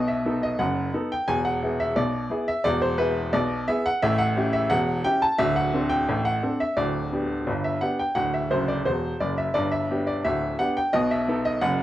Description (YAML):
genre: ragtime piano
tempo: 87 BPM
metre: 2/4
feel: straight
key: G major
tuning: A4 = 440 Hz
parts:
  - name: bright upright piano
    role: solo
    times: 0.0-11.8 s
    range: D1 to A5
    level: -22 LUFS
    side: equal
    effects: none
room: moderate studio reverb, RT60 0.7 s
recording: worn, warbling old tape, cassette tape, warbly pitch drift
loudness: -22 LUFS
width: side -14 dB against mid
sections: 0.0-11.8 A section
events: upright piano fill 8.5-9.5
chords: 0.0 B7; 1.3 E; 4.0 A7; 5.4 D5; 6.8 G/D; 8.2 D; 9.5 G; 10.9 B7